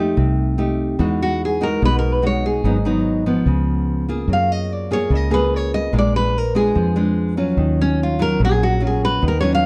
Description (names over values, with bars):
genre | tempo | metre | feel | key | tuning
bossa nova | 146 BPM | 4/4 | straight | Eb minor | A4 = 440 Hz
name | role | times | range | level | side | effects
nylon-string guitar | accompaniment | 0.0-9.7 s | Ab2 to Ab4 | -22 LUFS | equal | none
fingered electric bass | bass | 0.0-9.7 s | Ab1 to Gb2 | -23 LUFS | equal | none
nylon-string guitar | melody | 1.2-9.7 s | Db4 to F5 | -23 LUFS | equal | none
room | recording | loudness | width
wet small room reverb, RT60 0.6 s | heard from further back in the room | -19 LUFS | mono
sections
0.0-9.7 A section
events
nylon-string guitar solo 0.0-9.7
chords
0.0 F9; 1.0 Emaj9; 2.6 Abm7; 3.5 Db7; 4.3 Gbmaj9; 5.9 Bb7; 7.6 Ebm9